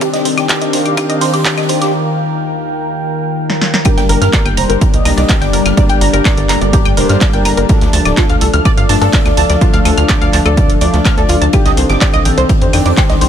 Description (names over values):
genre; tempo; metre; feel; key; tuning
melodic techno; 125 BPM; 4/4; straight; G minor; A4 = 440 Hz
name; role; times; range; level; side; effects
expressive synth lead; melody; 0.0-13.3 s; G4 to Eb5; -22 LUFS; right 1 dB; lush chorus, vintage 12-bit sampler grit, tape echo
deep dark ambient pad; sustained chords; 0.0-13.3 s; Eb3 to G5; -22 LUFS; equal; chorus, built-in reverb, sidechain pumping
tight sequenced synth; arpeggios; 0.0-13.3 s; F4 to F6; -18 LUFS; equal; chorus, phaser, sidechain pumping, ping-pong delay
analog synth brass; stabs; 0.0-13.3 s; Eb3 to D4; -18 LUFS; left 4 dB; chorus, vintage 12-bit sampler grit, sidechain pumping, ping-pong delay
electronic kick drum; drums; 0.0-13.1 s; none; -13 LUFS; equal; high-pass filter on kick, high-pass filter on room
open jazz drum kit; drums; 0.0-13.3 s; hi-hat, ride cymbal, snare drum; -28 LUFS; left 1 dB; high-pass filter on cymbals, high-pass filter on hats, high-pass filter on snare, high-pass filter on room
punchy analog drum machine; drums; 0.0-13.3 s; claves, handclaps, hi-hat, snare drum; -18 LUFS; equal; sidechain pumping on hats, sidechain pumping on perc
warbly tape-like pad; texture; 0.0-13.3 s; Eb3 to G5; -23 LUFS; equal; chorus, built-in reverb, sidechain pumping
tight sequencer bass; bass; 4.0-13.3 s; D1 to G2; -15 LUFS; equal; sidechain pumping
room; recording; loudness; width
light reverb; none; -10 LUFS; side -9 dB against mid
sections
0.0-3.9 A section; 3.9-13.3 B section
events
build-up 0.0-3.9; filter sweep on analog synth lead 0.0-3.9; break 1.9-3.9; drum fill 3.5-3.9; drop 3.9-13.3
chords
0.0 Eb; 3.9 Gm; 7.7 Dm; 11.5 Cmadd9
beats
| 0.01 0.49 0.97 1.45 | 1.93 2.41 2.89 3.37 | 3.85 4.33 4.81 5.29 | 5.77 6.25 6.73 7.21 | 7.69 8.17 8.65 9.13 | 9.61 10.09 10.57 11.05 | 11.53 12.01 12.49 12.97